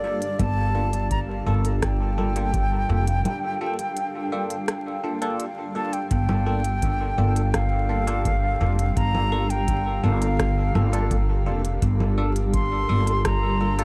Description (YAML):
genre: ambient dub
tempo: 84 BPM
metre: 4/4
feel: straight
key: G minor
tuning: A4 = 440 Hz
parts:
  - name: wooden flute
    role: melody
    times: 0.0-13.8 s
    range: D5 to C6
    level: -31 LUFS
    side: equal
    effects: dub echo
  - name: granular cloud pad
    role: sustained chords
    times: 0.0-13.8 s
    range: G3 to F5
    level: -34 LUFS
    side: equal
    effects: built-in reverb
  - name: barky tine electric piano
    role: stabs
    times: 0.0-13.8 s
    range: Bb3 to A4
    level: -34 LUFS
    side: equal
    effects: phaser, dub echo
  - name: organic electronic drum kit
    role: drums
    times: 0.2-13.8 s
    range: congas, hi-hat, rim click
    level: -34 LUFS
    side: equal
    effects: dub echo
  - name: upright bass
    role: bass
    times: 0.4-13.8 s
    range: F1 to G1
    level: -25 LUFS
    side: equal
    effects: none
  - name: electronic kick drum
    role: drums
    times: 0.4-13.4 s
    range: none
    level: -30 LUFS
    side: equal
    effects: none
room: light reverb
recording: vinyl crackle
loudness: -23 LUFS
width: mono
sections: 0.0-6.1 A section; 6.1-13.8 B section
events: break 3.3-6.1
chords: 0.0 Gm9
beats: | 0.40 1.11 1.82 2.54 | 3.25 3.97 4.68 5.39 | 6.11 6.82 7.54 8.25 | 8.97 9.68 10.39 11.11 | 11.82 12.54 13.25